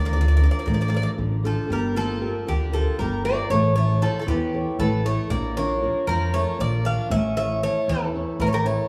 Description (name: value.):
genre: greek folk, Greek bouzouki band.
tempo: 233 BPM (eighths).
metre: 7/8.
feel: straight.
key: unclear.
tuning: A4 = 436 Hz.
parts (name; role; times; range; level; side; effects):
Greek bouzouki; melody; 0.0-8.9 s; G4 to F5; -28 LUFS; equal; none.
Greek bouzouki; second line; 0.0-8.9 s; D3 to D4; -35 LUFS; equal; none.
flamenco guitar; accompaniment; 0.0-8.9 s; D3 to D5; -30 LUFS; equal; none.
upright bass; bass; 0.0-8.8 s; G1 to F2; -26 LUFS; equal; none.
room: moderate plate reverb, RT60 2.7 s.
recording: heard from further back in the room, small room ambience.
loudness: -23 LUFS.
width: mono.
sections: 0.0-1.7 A section; 1.7-8.9 A section.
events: none.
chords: 0.0 Dm; 1.7 Gm7; 3.5 A; 5.3 Bb; 7.1 A.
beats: 0.16 0.41 0.67 0.93 1.19 1.44 | 1.70 1.96 2.22 2.47 2.73 2.99 3.25 | 3.50 3.76 4.02 4.28 4.53 4.79 5.05 | 5.31 5.56 5.82 6.08 6.34 6.59 6.85 | 7.11 7.37 7.62 7.88 8.14 8.40 8.66.